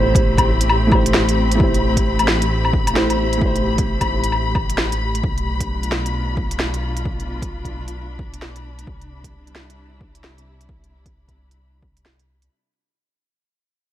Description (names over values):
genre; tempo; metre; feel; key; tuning
future garage; 132 BPM; 4/4; swing 62% on 16ths; unclear; A4 = 440 Hz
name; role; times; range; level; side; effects
warm upright piano; accompaniment; 0.0-5.3 s; A3 to C5; -22 LUFS; right 1 dB; sidechain pumping, dub echo
warm studio string section; sustained chords; 0.0-12.5 s; A2 to B5; -25 LUFS; left 3 dB; vintage 12-bit sampler grit, sidechain pumping
dark detuned saw bass; bass; 0.0-12.5 s; A1 to C2; -23 LUFS; equal; sidechain pumping
electronic kick drum; drums; 0.1-11.9 s; none; -21 LUFS; equal; overdrive
organic electronic drum kit; drums; 0.2-12.5 s; hi-hat, snare drum, woodblock; -21 LUFS; left 1 dB; none
room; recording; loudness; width
light reverb, small room ambience; vinyl crackle; -16 LUFS; side -12 dB against mid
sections
0.0-12.5 A section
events
fade-out 0.0-12.5; filter sweep on detuned saw bass 0.0-12.5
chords
0.0 Am7; 5.2 Bm7b5; 8.9 Cmaj7